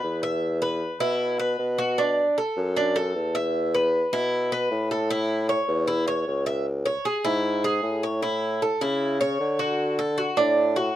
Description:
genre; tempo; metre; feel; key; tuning
latin, Cuban son and guajira; 154 BPM; 4/4; straight; A major; A4 = 440 Hz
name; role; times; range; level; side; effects
Cuban tres; arpeggios; 0.0-11.0 s; D4 to E5; -25 LUFS; right 1 dB; none
warm bassoon; bass; 0.0-10.9 s; C#2 to D3; -25 LUFS; equal; none
room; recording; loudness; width
little or no reverb; dry, close 1970s-style studio recording; -22 LUFS; side -12 dB against mid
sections
0.0-6.7 A section; 6.7-11.0 B section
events
none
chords
0.0 E5; 2.0 Bm7; 3.5 E5; 5.1 A; 6.7 C#m; 8.2 A; 9.8 D

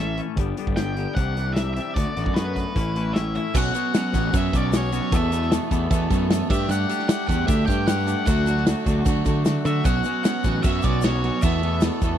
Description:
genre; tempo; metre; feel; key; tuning
indie rock; 152 BPM; 4/4; straight; unclear; A4 = 440 Hz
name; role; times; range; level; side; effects
octave-fuzz lead guitar; melody; 0.0-11.8 s; B4 to G5; -28 LUFS; left 2 dB; distortion, slapback echo
twangy electric guitar; riff; 0.0-12.2 s; E2 to A4; -29 LUFS; left 9 dB; none
fuzz picked electric bass; bass; 0.0-12.2 s; G1 to D3; -24 LUFS; equal; overdrive
loose indie drum kit; drums; 0.2-12.1 s; crash cymbal, hi-hat, kick drum, snare drum; -24 LUFS; equal; none
glockenspiel with brass mallets; second line; 3.4-11.8 s; C#6 to G6; -40 LUFS; right 13 dB; none
clean electric guitar; riff; 3.5-12.2 s; E3 to A4; -27 LUFS; right 8 dB; analog chorus, slapback echo
tube shaker; percussion; 3.6-12.1 s; none; -41 LUFS; left 30 dB; none
room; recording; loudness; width
little or no reverb; dry, close 1970s-style studio recording; -20 LUFS; side -10 dB against mid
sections
0.0-3.5 A section; 3.5-12.2 B section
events
none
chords
0.4 G; 1.2 Cadd9; 2.0 D6; 2.8 A; 3.5 Bsus2; 5.1 Esus4; 6.5 Gsus2; 8.3 D; 9.9 Bsus2; 11.4 Esus4

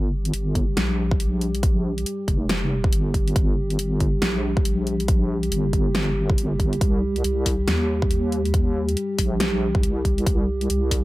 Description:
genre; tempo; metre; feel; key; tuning
deep dubstep; 139 BPM; 4/4; swing 61% on 16ths, half-time; G minor; A4 = 443 Hz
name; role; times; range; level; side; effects
dark analog pad; sustained chords; 0.0-11.0 s; G3 to G4; -27 LUFS; equal; chorus
deep soft wobble bass; bass; 0.0-11.0 s; F1 to Eb2; -24 LUFS; equal; chorus
dubstep drum kit; drums; 0.3-11.0 s; hi-hat, snare drum; -27 LUFS; equal; none
electronic kick drum; drums; 0.6-11.0 s; none; -22 LUFS; equal; none
room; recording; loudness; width
moderate spring reverb, RT60 1.8 s; none; -20 LUFS; side -18 dB against mid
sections
0.0-11.0 A section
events
none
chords
0.0 Gm; 6.8 Cm

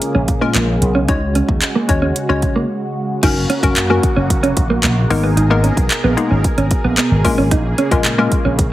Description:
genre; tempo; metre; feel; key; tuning
dance-pop; 112 BPM; 4/4; straight; F# major; A4 = 439 Hz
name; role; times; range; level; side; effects
hollow square pluck; accompaniment; 0.0-8.7 s; G#3 to C#5; -19 LUFS; left 4 dB; chorus, sidechain pumping
filtered supersaw swell; sustained chords; 0.0-8.7 s; B2 to A#4; -23 LUFS; right 1 dB; sidechain pumping
house drum kit; drums; 0.0-8.7 s; crash cymbal, handclaps, hi-hat, kick drum; -18 LUFS; equal; none
mellow electric guitar; riff; 0.1-8.6 s; A#3 to D#4; -19 LUFS; right 3 dB; lush chorus
slap bass with an envelope filter; bass; 0.2-8.7 s; F#1 to C#3; -18 LUFS; equal; sidechain pumping
room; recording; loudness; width
light reverb, digital ambience; heavily compressed radio sound; -13 LUFS; side -14 dB against mid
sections
0.0-3.2 A section; 3.2-8.7 B section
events
break 2.7-3.2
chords
0.0 G#madd9; 1.1 C#sus4; 3.2 F#; 5.1 G#madd9; 7.2 A#m7

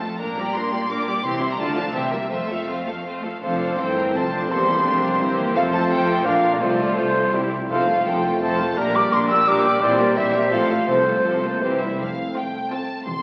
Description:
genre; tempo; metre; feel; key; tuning
quick classical-period movement for symphony orchestra; 169 BPM; 3/4; rubato; F major; A4 = 439 Hz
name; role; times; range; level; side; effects
rich studio violin section; melody; 0.0-13.2 s; C5 to E6; -32 LUFS; equal; none
rich chamber violin section; second line; 0.0-13.0 s; E4 to F5; -32 LUFS; equal; none
rich chamber viola section; accompaniment; 0.0-13.0 s; E3 to F4; -30 LUFS; equal; none
rich studio cello section; bass; 0.0-13.2 s; C2 to F3; -33 LUFS; equal; none
rich chamber double bass section; bass; 0.2-13.2 s; E1 to F2; -38 LUFS; equal; none
mellow concert flute; second line; 3.4-11.8 s; C5 to E6; -24 LUFS; equal; none
warm clarinet; second line; 3.4-11.8 s; E4 to A4; -31 LUFS; equal; none
warm oboe; second line; 3.4-11.8 s; Bb4 to D5; -31 LUFS; equal; none
mellow bassoon; accompaniment; 3.4-11.8 s; E3 to C4; -29 LUFS; equal; none
mellow French horn section; sustained chords; 3.4-13.2 s; G3 to G4; -32 LUFS; equal; none
timpani; percussion; 6.6-8.2, 10.9-11.4 s; F2 to C3; -37 LUFS; equal; none
room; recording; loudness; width
wet scoring stage reverb, RT60 1.6 s; very old 78 rpm record, vinyl crackle; -21 LUFS; mono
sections
0.0-3.4 A section; 3.4-12.0 B section; 12.0-13.2 B section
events
none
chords
0.2 Gm/Bb; 1.2 C; 1.6 Dm; 1.9 C7; 2.3 F; 4.5 C7/E; 5.6 F; 6.2 Bb; 6.6 F/C; 7.3 C; 7.7 F; 8.8 Gm/Bb; 9.8 C7/Bb; 10.5 F/A; 10.9 F/C; 11.6 C; 12.0 F

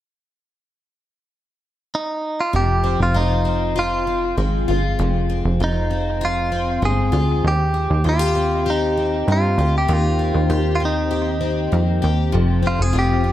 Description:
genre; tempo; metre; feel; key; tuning
dream pop; 98 BPM; 4/4; straight; unclear; A4 = 439 Hz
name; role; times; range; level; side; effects
direct-recorded clean electric guitar; melody; 1.9-13.3 s; Eb4 to Ab4; -22 LUFS; right 1 dB; warbly pitch drift, analog delay
picked plugged-in twelve-string acoustic guitar; arpeggios; 2.5-13.3 s; F2 to G4; -22 LUFS; left 4 dB; lush chorus, analog delay
plucky analog bass; bass; 2.5-13.3 s; F1 to G2; -20 LUFS; right 1 dB; none
room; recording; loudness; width
moderate spring reverb, RT60 1.3 s, small room ambience; echo-heavy mix; -17 LUFS; side -13 dB against mid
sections
0.1-2.5 A section; 2.5-13.3 B section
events
none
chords
0.1 N.C.; 2.5 Fm7; 7.4 Eb6; 12.3 F5

